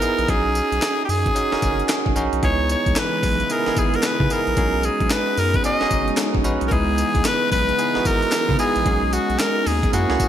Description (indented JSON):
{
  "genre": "R&B, new jack swing",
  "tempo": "112 BPM",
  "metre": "4/4",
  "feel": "swing 63% on 16ths",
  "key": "unclear",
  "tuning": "A4 = 440 Hz",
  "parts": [
    { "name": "raspy tenor saxophone", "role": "melody", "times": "0.0-10.3 s", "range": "F#4 to D#5", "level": "-22 LUFS", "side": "left 1 dB", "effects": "none" },
    { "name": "bell-like tine electric piano", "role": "accompaniment", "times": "0.0-10.3 s", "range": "A#3 to B4", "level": "-24 LUFS", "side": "right 3 dB", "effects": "medium stereo tremolo" },
    { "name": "breakbeat sampler-style drum kit", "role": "drums", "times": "0.0-10.3 s", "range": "handclaps, hi-hat, kick drum, snare drum, tambourine", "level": "-24 LUFS", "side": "equal", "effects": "gated reverb" },
    { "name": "round analog bass", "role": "bass", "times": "0.2-10.2 s", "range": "F#1 to C#3", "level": "-24 LUFS", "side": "equal", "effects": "none" },
    { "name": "lush unison pad", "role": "sustained chords", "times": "2.8-10.3 s", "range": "C#3 to A#4", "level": "-28 LUFS", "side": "left 1 dB", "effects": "chorus" }
  ],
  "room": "moderate lush hall reverb, RT60 2.0 s",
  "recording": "bright 1980s-style digital production",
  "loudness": "-17 LUFS",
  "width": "side -10 dB against mid",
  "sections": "0.0-10.3 A section",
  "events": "none",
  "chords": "0.3 B6; 2.4 C#m7; 4.6 B6; 6.7 C#m7; 8.9 B6"
}